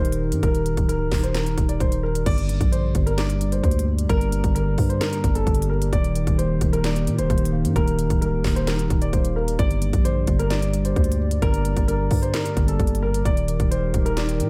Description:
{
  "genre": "hip hop, trap",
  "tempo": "131 BPM",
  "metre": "4/4",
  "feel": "half-time",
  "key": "G minor",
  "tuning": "A4 = 440 Hz",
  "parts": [
    { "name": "dark baby grand piano", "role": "melody", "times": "0.0-14.5 s", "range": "A4 to D5", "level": "-30 LUFS", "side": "equal", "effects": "subtle chorus, analog delay" },
    { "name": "dark analog pad", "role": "sustained chords", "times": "0.0-14.5 s", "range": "Eb3 to D5", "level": "-31 LUFS", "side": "equal", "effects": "chorus" },
    { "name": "growling 808-style bass", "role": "bass", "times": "0.0-14.5 s", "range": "D1 to Bb2", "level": "-26 LUFS", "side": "equal", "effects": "none" },
    { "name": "trap drum kit", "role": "drums", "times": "0.0-14.5 s", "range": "crash cymbal, handclaps, hi-hat, kick drum, snare drum", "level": "-26 LUFS", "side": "equal", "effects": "none" },
    { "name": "mellow tine electric piano", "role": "accompaniment", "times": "2.3-14.5 s", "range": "G2 to Bb3", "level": "-30 LUFS", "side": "equal", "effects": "none" }
  ],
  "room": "moderate plate reverb, RT60 1.1 s",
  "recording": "dreamy mix soaked in reverb",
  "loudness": "-22 LUFS",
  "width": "mono",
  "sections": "0.0-2.3 A section; 2.3-14.5 B section",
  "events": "none",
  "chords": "0.0 Eb; 2.3 Gm; 5.9 Eb; 9.6 Gm; 13.3 Eb",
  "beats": "| 0.43 0.89 1.35 1.80 | 2.26 2.72 3.18 3.64 | 4.09 4.55 5.01 5.47 | 5.93 6.38 6.84 7.30 | 7.76 8.22 8.67 9.13 | 9.59 10.05 10.51 10.96 | 11.42 11.88 12.34 12.80 | 13.25 13.71 14.17"
}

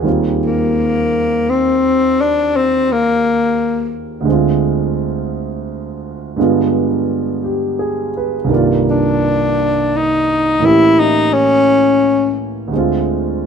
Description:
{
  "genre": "jazz ballad",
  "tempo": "57 BPM",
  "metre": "4/4",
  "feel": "swing 66% on 8ths",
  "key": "unclear",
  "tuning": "A4 = 440 Hz",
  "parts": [
    { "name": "warm grand piano", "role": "accompaniment", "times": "0.0-13.5 s", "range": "C2 to D5", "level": "-17 LUFS", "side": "right 3 dB", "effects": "none" },
    { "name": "growling tenor saxophone", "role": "melody", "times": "0.5-12.4 s", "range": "Bb3 to E4", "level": "-13 LUFS", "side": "left 2 dB", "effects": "none" }
  ],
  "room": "moderate echo chamber reverb, RT60 1.9 s",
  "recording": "dark, warm production",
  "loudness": "-13 LUFS",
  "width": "side -6 dB against mid",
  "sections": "0.0-13.5 A section",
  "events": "tenor saxophone solo 0.0-13.5",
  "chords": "0.0 Eb69; 4.3 Dm7b5; 6.4 G7b9; 8.5 Cm11; 10.6 A7b9; 12.7 Dm7b5",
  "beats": "| 0.04 1.09 2.14 3.20 | 4.25 5.31 6.37 7.43 | 8.50 9.55 10.61 11.66 | 12.71"
}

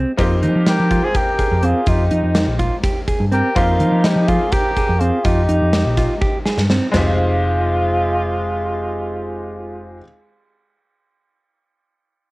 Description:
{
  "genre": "progressive instrumental, band music in an uneven meter",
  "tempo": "249 BPM (eighths)",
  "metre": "7/8",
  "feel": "straight",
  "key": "F minor",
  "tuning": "A4 = 440 Hz",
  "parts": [
    { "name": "bright concert grand piano", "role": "accompaniment", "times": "0.0-10.0 s", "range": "Ab3 to G4", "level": "-26 LUFS", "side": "left 2 dB", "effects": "cassette tape" },
    { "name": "mellow electric guitar", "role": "arpeggios", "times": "0.0-10.1 s", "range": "C4 to F5", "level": "-23 LUFS", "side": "right 2 dB", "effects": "warbly pitch drift, cassette tape" },
    { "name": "hollow-body short-scale picked electric bass", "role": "bass", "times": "0.0-10.0 s", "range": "F1 to F3", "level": "-19 LUFS", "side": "equal", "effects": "none" },
    { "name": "gated 80s drum kit", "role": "drums", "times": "0.2-7.1 s", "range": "hi-hat, kick drum, ride cymbal, snare drum, toms", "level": "-20 LUFS", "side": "equal", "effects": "cassette tape" },
    { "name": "warm tenor saxophone", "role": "melody", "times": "0.7-10.0 s", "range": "Eb4 to Ab4", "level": "-22 LUFS", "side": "left 1 dB", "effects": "cassette tape" },
    { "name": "breathy flugelhorn", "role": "second line", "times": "0.7-10.0 s", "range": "Ab3 to C5", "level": "-26 LUFS", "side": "right 1 dB", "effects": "cassette tape, tape echo" }
  ],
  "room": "light reverb, small room ambience",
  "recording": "home recording on cassette",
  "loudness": "-15 LUFS",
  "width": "side -21 dB against mid",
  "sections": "0.0-6.9 A section; 6.9-10.3 B section",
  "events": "drum fill 6.2-6.9",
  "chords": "0.2 Cm7; 6.9 Fm9",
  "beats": "| 0.19 0.43 0.67 0.92 1.16 1.40 1.64 | 1.88 2.12 2.36 2.60 2.84 3.08 3.33 | 3.57 3.81 4.05 4.29 4.53 4.77 5.01 | 5.25 5.50 5.74 5.98 6.22 6.46 6.70 | 6.94 7.18 7.43 7.67 7.91 8.15 8.39 | 8.63 8.88 9.12 9.36 9.60 9.84 10.08"
}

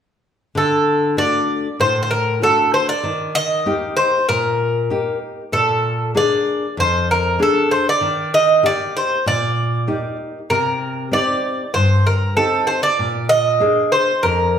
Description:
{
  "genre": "greek folk, Greek bouzouki band",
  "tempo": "96 BPM",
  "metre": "4/4",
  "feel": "straight",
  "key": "D phrygian dominant",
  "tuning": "A4 = 441 Hz",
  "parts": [
    { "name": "Greek bouzouki", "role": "melody", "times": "0.6-14.6 s", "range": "A4 to Eb5", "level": "-16 LUFS", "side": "right 1 dB", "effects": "none" },
    { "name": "nylon-string guitar", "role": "accompaniment", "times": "0.6-14.6 s", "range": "F2 to Ab4", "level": "-21 LUFS", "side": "left 2 dB", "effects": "none" }
  ],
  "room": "wet large studio reverb, RT60 1.1 s",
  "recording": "band playing live in one room",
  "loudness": "-15 LUFS",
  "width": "side -8 dB against mid",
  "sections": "0.5-14.6 A section",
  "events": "none",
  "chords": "0.5 D; 3.0 Eb; 5.5 Bb7; 8.0 Eb; 10.5 Cm; 13.0 Bb7",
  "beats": "| 0.55 1.17 1.79 2.42 | 3.04 3.66 4.28 4.90 | 5.52 6.15 6.77 7.39 | 8.01 8.63 9.26 9.88 | 10.50 11.12 11.74 12.36 | 12.98 13.60 14.22"
}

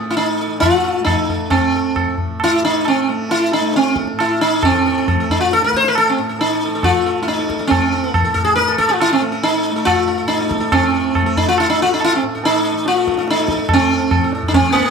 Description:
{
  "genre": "indian classical, Hindustani",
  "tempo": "138 BPM",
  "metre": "7/4",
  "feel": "straight",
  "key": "A raga todi",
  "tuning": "A4 = 443 Hz",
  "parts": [
    { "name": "tanpura", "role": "drone", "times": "0.0-14.9 s", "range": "A2 to A3", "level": "-26 LUFS", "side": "left 1 dB", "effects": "none" },
    { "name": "sitar", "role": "melody", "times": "0.1-14.9 s", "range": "Bb3 to C5", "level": "-15 LUFS", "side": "equal", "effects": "none" },
    { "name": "tabla", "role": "percussion", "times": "0.2-14.9 s", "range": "none", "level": "-20 LUFS", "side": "equal", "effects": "none" }
  ],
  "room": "light reverb",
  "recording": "close, detailed microphones",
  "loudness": "-14 LUFS",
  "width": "side -6 dB against mid",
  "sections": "0.0-4.6 A section; 4.6-14.9 B section",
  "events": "speeding up 0.0-14.9",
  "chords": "none",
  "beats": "0.17 0.62 1.07 | 1.52 1.97 2.41 2.86 3.31 3.75 4.19 | 4.64 5.08 5.52 5.96 6.40 6.83 7.27 | 7.71 8.14 8.57 9.01 9.44 9.87 10.30 | 10.73 11.16 11.58 12.01 12.43 12.86 13.28 | 13.70 14.12 14.54"
}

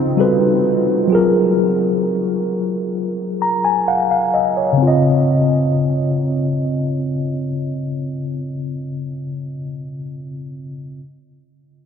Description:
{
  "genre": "R&B",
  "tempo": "65 BPM",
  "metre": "4/4",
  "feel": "straight",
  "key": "Db major",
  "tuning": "A4 = 440 Hz",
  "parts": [
    { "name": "mellow tine electric piano", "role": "accompaniment", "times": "0.0-11.0 s", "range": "Db3 to Bb5", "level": "-16 LUFS", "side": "left 1 dB", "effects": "medium stereo tremolo, low-pass filter" },
    { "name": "deep dark ambient pad", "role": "sustained chords", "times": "0.0-1.1 s", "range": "Db3 to F#4", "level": "-22 LUFS", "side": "right 1 dB", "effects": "chorus, built-in reverb, low-pass filter" }
  ],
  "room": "wet huge ambient reverb, RT60 4.5 s",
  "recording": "dreamy mix soaked in reverb",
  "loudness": "-16 LUFS",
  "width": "side -7 dB against mid",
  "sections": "0.0-4.8 A section; 4.8-8.5 B section",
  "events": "tine electric piano fill 3.0-4.8",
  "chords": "0.2 Gmaj9; 1.1 Gbmaj9; 4.8 Dbmaj9",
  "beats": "0.18 | 1.11 2.03 2.95 3.88 | 4.80 5.72 6.65 7.57"
}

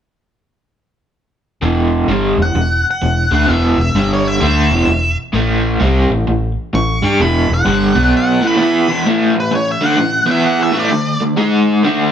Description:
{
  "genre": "rock",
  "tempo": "129 BPM",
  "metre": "4/4",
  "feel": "swing 64% on 8ths",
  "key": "unclear",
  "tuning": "A4 = 445 Hz",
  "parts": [
    { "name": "crunchy overdriven guitar", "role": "riff", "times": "1.6-12.1 s", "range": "E2 to G#4", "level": "-14 LUFS", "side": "equal", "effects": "tremolo" },
    { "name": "vintage muted fingered electric bass", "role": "bass", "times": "1.6-8.1 s", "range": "E1 to G2", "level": "-18 LUFS", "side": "equal", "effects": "none" },
    { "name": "octave-fuzz lead guitar", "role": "melody", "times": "2.4-11.2 s", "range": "B4 to C#6", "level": "-18 LUFS", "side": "equal", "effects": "distortion" }
  ],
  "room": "moderate large studio reverb, RT60 1.2 s",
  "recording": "band playing live in one room",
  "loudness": "-12 LUFS",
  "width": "side -9 dB against mid",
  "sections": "1.6-9.1 A section; 9.1-12.1 B section",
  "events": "none",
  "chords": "1.6 E5; 4.0 G5; 4.4 E5; 5.3 A7; 7.2 E5; 7.9 B5; 8.4 E5; 9.1 A5; 10.2 E5; 10.7 A5; 10.9 D5; 11.4 G#5",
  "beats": "| 1.63 2.09 2.56 3.02 | 3.49 3.95 4.42 4.88 | 5.35 5.81 6.28 6.74 | 7.20 7.67 8.13 8.59 | 9.05 9.52 9.98 10.44 | 10.90 11.37 11.83"
}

